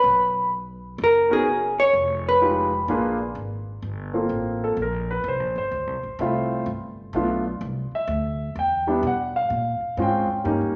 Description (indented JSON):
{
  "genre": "jazz, small-group swing and bop",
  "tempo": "127 BPM",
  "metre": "4/4",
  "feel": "swing 66% on 8ths",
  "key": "G minor from 3.8 s",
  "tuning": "A4 = 440 Hz",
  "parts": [
    { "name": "vintage hollow-body jazz guitar", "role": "melody", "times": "0.0-2.9 s", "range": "Ab4 to C#5", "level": "-21 LUFS", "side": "equal", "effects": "none" },
    { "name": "upright bass", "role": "bass", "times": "0.0-10.8 s", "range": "F1 to B2", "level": "-33 LUFS", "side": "equal", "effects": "none" },
    { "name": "warm concert grand piano", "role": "accompaniment", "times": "1.3-10.7 s", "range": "G3 to G5", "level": "-26 LUFS", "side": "equal", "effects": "none" }
  ],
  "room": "wet large studio reverb, RT60 1.4 s",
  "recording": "none",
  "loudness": "-24 LUFS",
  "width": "mono",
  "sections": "0.0-3.8 A section; 3.8-10.8 B section",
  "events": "none",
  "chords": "0.1 B5; 1.9 Fm7b5; 2.9 Bb7b9; 3.8 Gm11; 5.7 Dm7; 6.7 G7; 7.6 Cmaj7; 9.5 Bbm7",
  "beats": "| 0.05 0.53 1.00 1.47 | 1.94 2.42 2.89 3.36 | 3.83 4.31 4.78 5.25 | 5.73 6.20 6.67 7.15 | 7.62 8.09 8.56 9.04 | 9.51 9.98 10.46"
}